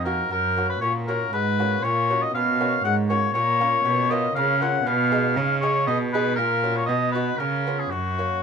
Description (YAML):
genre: classical, baroque-style sonata movement with continuo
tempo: 118 BPM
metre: 3/4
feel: straight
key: F# major from 3.3 s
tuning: A4 = 441 Hz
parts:
  - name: warm oboe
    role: melody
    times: 0.0-8.4 s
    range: F#4 to F#5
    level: -22 LUFS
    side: left 2 dB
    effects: none
  - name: lute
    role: accompaniment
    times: 0.0-8.4 s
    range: F2 to G#4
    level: -29 LUFS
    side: right 2 dB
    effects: none
  - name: rich cello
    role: bass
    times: 0.0-8.4 s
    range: F2 to C#3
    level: -25 LUFS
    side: right 2 dB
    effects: none
room: light reverb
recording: minimal, uncompressed stereo recording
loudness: -20 LUFS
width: side -6 dB against mid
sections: 0.0-8.4 A section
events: none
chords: 0.3 Gb; 1.8 Gb/Bb; 3.3 A#m; 4.9 G#m/B; 6.4 F#/A#; 6.9 B; 7.4 C#7; 7.9 F#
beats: | 0.30 0.81 1.32 | 1.83 2.34 2.85 | 3.35 3.85 4.36 | 4.86 5.37 5.88 | 6.38 6.89 7.40 | 7.92